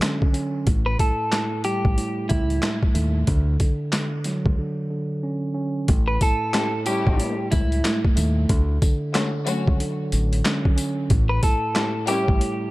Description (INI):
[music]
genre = hip hop, boom-bap hip-hop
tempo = 92 BPM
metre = 4/4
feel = swing 62% on 16ths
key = D major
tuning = A4 = 439 Hz
[part]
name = mellow tine electric piano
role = accompaniment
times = 0.0-12.7 s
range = A2 to C#4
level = -26 LUFS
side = right 1 dB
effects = high-pass filter, low-pass filter
[part]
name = boom bap sampler-style drum kit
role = drums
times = 0.0-12.6 s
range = handclaps, hi-hat, kick drum, snare drum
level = -22 LUFS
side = equal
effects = overdrive
[part]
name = deep dub fingered electric bass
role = bass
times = 0.7-12.4 s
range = A1 to Eb2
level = -22 LUFS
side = equal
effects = none
[part]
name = clean electric guitar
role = melody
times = 0.9-12.7 s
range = E4 to B4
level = -26 LUFS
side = equal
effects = high-pass filter, low-pass filter, tape echo
[part]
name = tambourine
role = percussion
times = 6.2-12.3 s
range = none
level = -37 LUFS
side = left 5 dB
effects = none
[part]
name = warm studio string section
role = stabs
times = 6.5-12.4 s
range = A3 to G4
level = -30 LUFS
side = left 4 dB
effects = high-pass filter, low-pass filter, tape echo
[sound]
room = little or no reverb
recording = dark, warm production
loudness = -20 LUFS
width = side -19 dB against mid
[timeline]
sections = 0.0-5.9 A section; 5.9-12.7 B section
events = break 4.6-5.9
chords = 0.0 Dmaj7; 0.7 A7(no3); 3.3 Dmaj7; 5.9 A7; 8.5 Dmaj7; 11.1 A7